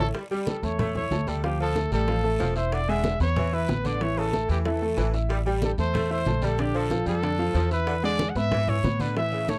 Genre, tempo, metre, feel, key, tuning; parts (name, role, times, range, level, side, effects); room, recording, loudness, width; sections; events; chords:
latin, salsa; 186 BPM; 4/4; straight; A4 = 441 Hz
clear trumpet; melody; 0.0-9.6 s; G4 to F#5; -31 LUFS; equal
bright baby grand piano; accompaniment; 0.0-9.6 s; D3 to E6; -32 LUFS; equal
upright bass; bass; 0.0-9.6 s; E1 to A2; -30 LUFS; equal
edgy saxophone section; second line; 0.1-9.5 s; C#3 to A3; -36 LUFS; equal
bongos; percussion; 0.1-9.6 s; -37 LUFS; equal
congas; percussion; 0.1-9.6 s; -35 LUFS; equal
guiro; percussion; 0.1-9.6 s; -48 LUFS; equal
little or no reverb; dry, close 1970s-style studio recording; -26 LUFS; mono
0.1-9.6 A section
drum fill 0.0; band accent 0.0
0.1 A7; 1.4 Dm; 2.7 E7; 4.0 A; 5.3 A5; 6.6 Bb; 7.9 E7